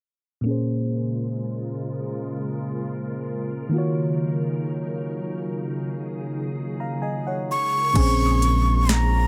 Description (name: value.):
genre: contemporary R&B.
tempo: 64 BPM.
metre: 4/4.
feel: swing 54% on 16ths.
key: unclear.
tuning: A4 = 440 Hz.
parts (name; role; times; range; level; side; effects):
mellow FM electric piano; accompaniment; 0.4-9.3 s; Bb2 to Bb5; -29 LUFS; equal; chorus, low-pass filter.
glassy FM pad; sustained chords; 0.4-9.3 s; Db3 to Bb4; -32 LUFS; equal; ensemble chorus, built-in reverb, low-pass filter.
breathy jazz flute; melody; 7.5-9.3 s; Bb5 to Db6; -24 LUFS; equal; none.
saturated sub bass; bass; 8.0-9.3 s; Bb1; -23 LUFS; equal; none.
smooth R&B drum kit; drums; 8.0-9.1 s; crash cymbal, hi-hat, kick drum, snare drum; -26 LUFS; equal; overdrive.
soft round pluck; texture; 8.0-9.3 s; Ab5 to Eb6; -45 LUFS; equal; none.
room: little or no reverb.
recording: none.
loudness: -25 LUFS.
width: mono.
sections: 0.5-8.0 A section; 8.0-9.3 B section.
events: filter sweep 0.5-8.0.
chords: 0.5 Bbm7; 3.7 Ebm7; 7.5 Bbm7.